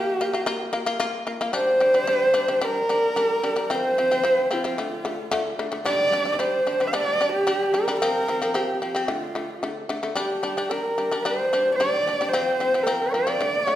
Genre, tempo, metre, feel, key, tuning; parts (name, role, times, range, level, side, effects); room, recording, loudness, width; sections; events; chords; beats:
mongolian traditional, Mongolian folk; 111 BPM; 4/4; straight; G minor; A4 = 438 Hz
dark horsehead fiddle; melody; 0.0-13.8 s; F4 to F5; -22 LUFS; right 1 dB; slapback echo
shamisen; arpeggios; 0.0-13.8 s; D3 to F4; -26 LUFS; left 2 dB
wet recital hall reverb, RT60 1.5 s; -21 LUFS; side -12 dB against mid
0.0-1.6 A section; 1.6-13.8 B section
0.0 Bb5; 1.6 G5; 3.7 F5; 4.8 D5; 5.9 G5; 8.0 F5; 9.1 D5; 10.2 G5; 12.3 F5
0.47 1.01 | 1.55 2.09 2.63 3.17 | 3.71 4.24 4.78 5.32 | 5.86 6.40 6.94 7.48 | 8.02 8.55 9.09 9.63 | 10.17 10.71 11.25 11.79 | 12.33 12.87 13.41